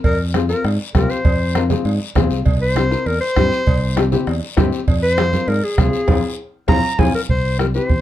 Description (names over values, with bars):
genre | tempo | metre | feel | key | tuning
latin, cumbia | 199 BPM | 4/4 | straight | F harmonic minor | A4 = 437 Hz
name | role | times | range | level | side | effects
warm clarinet | melody | 0.0-8.0 s | Ab4 to Bb5 | -20 LUFS | equal | none
fingered electric bass | bass | 0.0-8.0 s | C2 to Ab2 | -20 LUFS | equal | none
bombo | percussion | 0.0-8.0 s | none | -18 LUFS | right 1 dB | none
congas | percussion | 0.0-8.0 s | none | -25 LUFS | right 5 dB | none
cowbell and timbales | percussion | 0.0-7.1 s | none | -29 LUFS | right 4 dB | none
guiro | percussion | 0.0-8.0 s | none | -34 LUFS | left 7 dB | none
dark upright piano | accompaniment | 0.3-7.9 s | C4 to Bb4 | -22 LUFS | left 7 dB | none
room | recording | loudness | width
light reverb | dark, warm production | -15 LUFS | side -13 dB against mid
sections
0.0-7.3 A section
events
clarinet solo 0.0-7.3; band accent 6.1-7.3; drum fill 6.7-7.3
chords
0.0 Fm; 2.5 C; 4.9 Fm; 7.3 C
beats
| 0.04 0.35 0.65 0.95 | 1.25 1.55 1.86 2.16 | 2.46 2.76 3.07 3.37 | 3.67 3.97 4.27 4.58 | 4.88 5.18 5.48 5.78 | 6.08 6.39 6.69 6.99 | 7.29 7.59 7.90